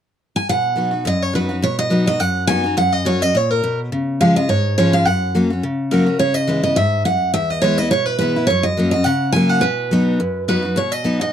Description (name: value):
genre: bluegrass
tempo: 210 BPM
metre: 4/4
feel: swing 54% on 8ths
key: B major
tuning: A4 = 435 Hz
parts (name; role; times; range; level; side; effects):
- picked steel-string acoustic guitar; melody; 0.4-11.3 s; A#4 to G#5; -18 LUFS; right 2 dB; none
- picked steel-string acoustic guitar; accompaniment; 0.5-11.3 s; E2 to F#4; -18 LUFS; left 1 dB; none
room: moderate booth ambience, RT60 0.2 s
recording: dry, close 1970s-style studio recording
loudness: -15 LUFS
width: side -9 dB against mid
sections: 0.5-1.6 A section; 1.6-10.8 B section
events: none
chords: 0.5 B; 2.8 F#; 3.9 C#; 5.1 F#; 6.2 C#m7; 7.3 E; 8.5 F#; 9.6 B